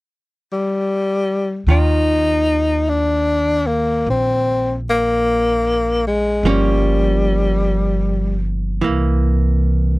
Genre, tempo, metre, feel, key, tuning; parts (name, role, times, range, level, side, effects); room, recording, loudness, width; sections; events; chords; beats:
jazz ballad; 50 BPM; 4/4; swing 67% on 8ths; Eb major; A4 = 439 Hz
breathy tenor saxophone; melody; 0.5-8.5 s; G3 to Eb4; -17 LUFS; left 2 dB
archtop guitar, miked and amplified; accompaniment; 1.7-10.0 s; Eb3 to F4; -22 LUFS; right 4 dB
upright bass; bass; 1.7-10.0 s; G1 to Eb2; -19 LUFS; equal
little or no reverb; dry, close 1970s-style studio recording; -15 LUFS; side -20 dB against mid
0.0-1.7 A section; 1.7-10.0 B section
0.0 N.C.; 1.7 Ebsus2; 6.5 Gm7b5; 8.8 C7
0.47 | 1.67 2.87 4.07 5.26 | 6.45 7.65 8.84